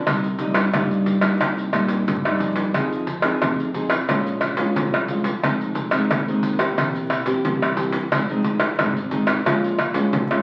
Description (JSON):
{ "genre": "samba and choro", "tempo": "89 BPM", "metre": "4/4", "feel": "straight", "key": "F minor", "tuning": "A4 = 440 Hz", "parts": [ { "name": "nylon-string guitar", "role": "accompaniment", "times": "0.0-10.4 s", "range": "F2 to Ab4", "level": "-25 LUFS", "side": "equal", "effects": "none" }, { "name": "overdriven fingered electric bass", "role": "bass", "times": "0.1-10.4 s", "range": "E1 to Bb2", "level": "-33 LUFS", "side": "equal", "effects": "none" }, { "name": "egg shaker, surdo, pandeiro and tamborim", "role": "percussion", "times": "0.1-10.4 s", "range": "none", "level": "-24 LUFS", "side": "equal", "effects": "none" } ], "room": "wet large studio reverb, RT60 1.0 s", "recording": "very old 78 rpm record, vinyl crackle", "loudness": "-21 LUFS", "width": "mono", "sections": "0.0-2.8 A section; 2.8-10.4 B section", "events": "none", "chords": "0.1 Cm7; 2.8 Fm7; 4.1 Bbm7; 5.4 Fm7; 6.8 C7/E; 8.1 Fm7; 9.5 Bbm7" }